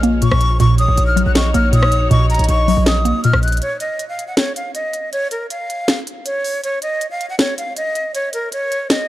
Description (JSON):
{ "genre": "hip hop, trap", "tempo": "159 BPM", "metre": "4/4", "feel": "half-time", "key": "unclear", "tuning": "A4 = 442 Hz", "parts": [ { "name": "hollow clarinet-like synth lead", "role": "second line", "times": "0.0-3.6 s", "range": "Db5 to Eb5", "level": "-26 LUFS", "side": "left 3 dB", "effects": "chorus, tape echo" }, { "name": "mallet-like synth pluck", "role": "accompaniment", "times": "0.0-3.6 s", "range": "Bb2 to Bb3", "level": "-16 LUFS", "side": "equal", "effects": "chorus, phaser" }, { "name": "dark studio string section", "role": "sustained chords", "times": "0.0-3.6 s", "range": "Bb3 to Db5", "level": "-27 LUFS", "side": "equal", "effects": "none" }, { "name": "hard-hitting 808-style bass", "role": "bass", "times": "0.0-3.6 s", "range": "Bb1", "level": "-16 LUFS", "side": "equal", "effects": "none" }, { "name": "trap drum kit", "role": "drums", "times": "0.0-9.0 s", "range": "hi-hat, rim click, snare drum", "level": "-20 LUFS", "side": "equal", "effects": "none" }, { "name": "breathy jazz flute", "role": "melody", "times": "0.2-9.1 s", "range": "Bb4 to Gb6", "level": "-20 LUFS", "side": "equal", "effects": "tape echo" } ], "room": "little or no reverb", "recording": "dark, warm production", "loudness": "-15 LUFS", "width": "side -15 dB against mid", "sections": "0.0-3.6 A section; 3.6-9.1 B section", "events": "break 3.6-9.1", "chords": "0.0 Bbm7; 0.6 Ebm7/Bb; 3.6 N.C.", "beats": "0.22 | 0.60 0.98 1.35 1.73 | 2.11 2.49 2.86 3.24 | 3.62 4.00 4.37 4.75 | 5.13 5.50 5.88 6.26 | 6.64 7.01 7.39 7.77 | 8.15 8.52 8.90" }